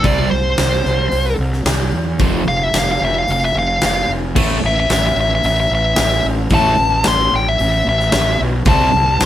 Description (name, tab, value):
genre	hard rock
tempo	111 BPM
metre	4/4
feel	straight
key	A minor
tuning	A4 = 440 Hz
part	nasal lead guitar with a parked wah	melody	0.0-9.2 s	C5 to C6	-16 LUFS	left 1 dB	overdrive
part	sludgy distorted guitar	riff	0.0-8.9 s	F2 to C4	-18 LUFS	right 1 dB	overdrive
part	fuzz fingered electric bass	bass	0.0-9.3 s	F1 to E2	-18 LUFS	equal	overdrive
part	huge arena drum kit	drums	0.0-9.3 s	crash cymbal, hi-hat, kick drum, snare drum	-20 LUFS	equal	none
room	moderate small room ambience, RT60 0.5 s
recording	band playing live in one room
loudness	-13 LUFS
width	side -12 dB against mid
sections	0.0-9.3 A section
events	lead electric guitar solo 0.0-9.3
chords	0.0 N.C.; 2.2 F5; 4.4 A5; 8.7 C5